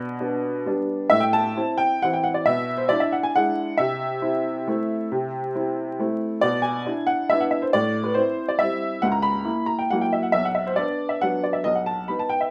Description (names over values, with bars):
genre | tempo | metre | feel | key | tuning
classical, piano waltz | 137 BPM | 3/4 | uneven beats, rubato | unclear | A4 = 440 Hz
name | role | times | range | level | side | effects
warm upright piano | solo | 0.0-12.5 s | B1 to B5 | -23 LUFS | equal | none
room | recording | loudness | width
moderate large studio reverb, RT60 1.1 s | vinyl crackle | -23 LUFS | mono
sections
0.0-12.5 A section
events
none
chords
0.0 G/B; 1.1 Am; 2.5 E7/B; 3.8 Am/C; 6.4 E7/B; 7.7 Am7; 9.0 F#7/C#; 10.3 Bm; 11.6 B